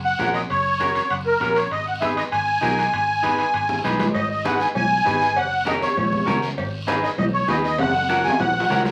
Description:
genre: latin, cumbia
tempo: 197 BPM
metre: 4/4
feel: straight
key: G# minor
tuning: A4 = 440 Hz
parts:
  - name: musette accordion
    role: melody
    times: 0.0-8.8 s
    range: A#4 to G#5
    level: -23 LUFS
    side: equal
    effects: none
  - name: fingered electric bass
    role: bass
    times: 0.0-8.9 s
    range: F#1 to D#2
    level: -32 LUFS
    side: equal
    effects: none
  - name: clean electric guitar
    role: accompaniment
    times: 0.2-8.9 s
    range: C#4 to B4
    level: -28 LUFS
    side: equal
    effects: none
  - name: congas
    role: percussion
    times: 0.2-8.9 s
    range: none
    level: -30 LUFS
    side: equal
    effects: none
  - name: guiro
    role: percussion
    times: 0.2-8.9 s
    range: none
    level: -39 LUFS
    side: equal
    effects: none
  - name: timbales and cowbell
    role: percussion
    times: 0.2-8.9 s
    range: none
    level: -32 LUFS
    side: equal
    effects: none
room: wet studio reverb, RT60 0.5 s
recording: vinyl crackle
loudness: -21 LUFS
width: mono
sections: 0.0-4.2 A section; 4.2-8.9 B section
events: drum fill 3.7-4.2, 7.8-8.9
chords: 0.0 F#; 1.7 G#m; 5.4 F#; 6.6 G#m; 7.8 F#

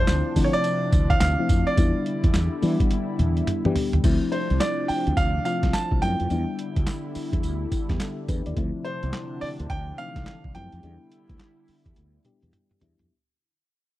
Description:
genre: R&B, new jack swing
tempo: 106 BPM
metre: 4/4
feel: swing 63% on 16ths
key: D dorian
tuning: A4 = 440 Hz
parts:
  - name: clear concert grand piano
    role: melody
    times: 0.0-12.8 s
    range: C5 to A5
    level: -28 LUFS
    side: right 2 dB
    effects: none
  - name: mellow FM electric piano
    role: accompaniment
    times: 0.0-13.1 s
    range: E3 to D5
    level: -29 LUFS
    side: left 4 dB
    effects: chorus
  - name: lush unison pad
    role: sustained chords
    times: 0.0-13.1 s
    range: C3 to E4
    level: -33 LUFS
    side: right 1 dB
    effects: chorus, phaser
  - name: mellow fretless electric bass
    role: bass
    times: 0.0-13.1 s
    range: C2 to E3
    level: -25 LUFS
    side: equal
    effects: analog chorus
  - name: boom bap sampler-style drum kit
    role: drums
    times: 0.1-13.1 s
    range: crash cymbal, handclaps, hi-hat, kick drum, snare drum, tambourine, toms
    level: -24 LUFS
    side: equal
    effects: overdrive
room: little or no reverb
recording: dry, close 1970s-style studio recording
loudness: -21 LUFS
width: side -15 dB against mid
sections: 0.0-4.0 A section; 4.0-13.1 B section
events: drum fill 2.9-4.0, 12.0-13.1; fade-out 4.0-13.1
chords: 0.0 Dm7; 1.8 Em7; 4.0 Dm7; 6.3 Em7; 8.6 Dm7; 10.8 Em7

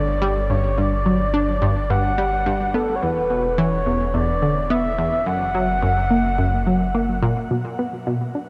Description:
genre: ambient, sequencer-driven space music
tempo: 107 BPM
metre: 4/4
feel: straight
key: unclear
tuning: A4 = 440 Hz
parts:
  - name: breathy flute-like synth lead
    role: melody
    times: 0.0-7.2 s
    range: A4 to F#5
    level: -25 LUFS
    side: equal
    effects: chorus, vintage 12-bit sampler grit, shimmer reverb, analog delay
  - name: analog pluck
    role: riff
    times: 0.0-8.5 s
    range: E2 to D4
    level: -24 LUFS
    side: equal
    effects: chorus, analog delay
  - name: warm sub bass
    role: bass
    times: 0.0-7.5 s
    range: E1 to G1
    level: -28 LUFS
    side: equal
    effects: none
room: moderate huge ambient reverb, RT60 8.1 s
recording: none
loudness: -20 LUFS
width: mono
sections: 0.0-7.5 A section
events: none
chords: 0.0 G5; 3.0 E5; 5.3 F#; 7.5 Bm

